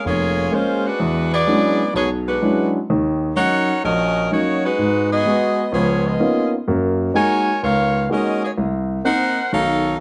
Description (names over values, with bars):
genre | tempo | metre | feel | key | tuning
jazz | 127 BPM | 4/4 | swing 68% on 8ths | unclear | A4 = 440 Hz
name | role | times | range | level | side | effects
warm saxophone section | melody | 0.0-10.0 s | G#3 to Ab5 | -22 LUFS | equal | none
warm grand piano | accompaniment | 0.1-9.9 s | F1 to Gb4 | -21 LUFS | equal | none
room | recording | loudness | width
moderate large studio reverb, RT60 0.8 s | close, detailed microphones | -19 LUFS | mono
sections
0.0-10.0 A section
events
none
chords
0.0 Bbm7; 1.0 E13; 2.9 Ebm7; 4.8 Abm7; 5.7 Db13; 6.7 Gb69; 8.6 Cm7b5